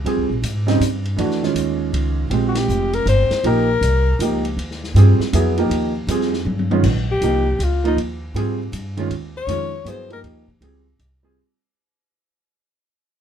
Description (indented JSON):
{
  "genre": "modal jazz",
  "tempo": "159 BPM",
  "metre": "3/4",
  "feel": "swing 65% on 8ths",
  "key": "unclear",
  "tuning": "A4 = 440 Hz",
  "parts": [
    { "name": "upright bass", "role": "bass", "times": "0.0-11.4 s", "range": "F1 to Ab2", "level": "-19 LUFS", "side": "equal", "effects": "none" },
    { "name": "warm concert grand piano", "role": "accompaniment", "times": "0.1-11.4 s", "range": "Ab2 to Ab4", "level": "-21 LUFS", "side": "right 4 dB", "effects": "none" },
    { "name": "vintage drum kit", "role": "drums", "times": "0.1-11.1 s", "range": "crash cymbal, hi-hat, kick drum, ride cymbal, snare drum, toms", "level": "-29 LUFS", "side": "left 3 dB", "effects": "none" },
    { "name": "breathy alto saxophone", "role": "melody", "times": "2.5-4.4, 7.1-10.2 s", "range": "Eb4 to Db5", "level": "-21 LUFS", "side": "left 4 dB", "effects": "none" }
  ],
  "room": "light reverb",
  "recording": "minimal, uncompressed stereo recording",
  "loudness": "-17 LUFS",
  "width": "side -9 dB against mid",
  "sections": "0.0-6.8 A section; 6.8-11.4 B section",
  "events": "band accent 2.5; drum fill 6.5-6.8; fade-out 6.8-11.4; alto saxophone solo 6.8-11.4",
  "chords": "0.0 Bbm9 (rootless); 2.3 Eb; 6.8 Eb/Bb"
}